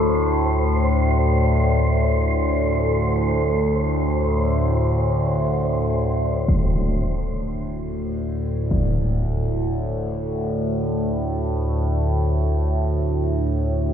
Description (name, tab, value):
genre	dark ambient drone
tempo	free time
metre	none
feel	none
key	unclear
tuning	A4 = 440 Hz
part	overtone-sweeping drone	drone	0.0-13.9 s	D2 to A2	-20 LUFS	equal	chorus, built-in reverb, phaser
part	wind-like tuned noise texture	texture	0.0-6.5 s	C5	-29 LUFS	equal	built-in reverb
part	impact	percussion	6.5-8.9 s	none	-23 LUFS	equal	low-pass filter on sfx
room	wet echo chamber reverb, RT60 2.3 s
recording	none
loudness	-19 LUFS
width	side -8 dB against mid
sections	0.0-6.5 A section; 6.5-13.9 B section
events	none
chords	0.0 D5